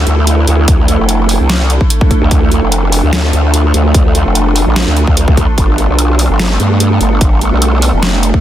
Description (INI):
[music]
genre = heavy wobble dubstep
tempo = 147 BPM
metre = 4/4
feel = swing 53% on 16ths, half-time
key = D dorian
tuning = A4 = 444 Hz
[part]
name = evolving wavetable pad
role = sustained chords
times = 0.0-8.4 s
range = F3 to A4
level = -16 LUFS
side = right 2 dB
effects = chorus, built-in reverb, vintage 12-bit sampler grit, sidechain pumping
[part]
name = growl bass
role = bass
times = 0.0-8.3 s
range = F1 to G2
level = -11 LUFS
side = equal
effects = chorus, overdrive
[part]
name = dubstep drum kit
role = drums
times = 0.1-8.3 s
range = hi-hat, snare drum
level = -17 LUFS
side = equal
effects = overdrive
[part]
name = electronic kick drum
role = drums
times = 0.7-8.4 s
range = none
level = -11 LUFS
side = equal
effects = overdrive
[sound]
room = digital ambience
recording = dense, heavily limited modern master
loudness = -8 LUFS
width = side -12 dB against mid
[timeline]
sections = 0.0-8.4 A section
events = none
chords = 0.0 Dmadd9; 5.6 Gadd9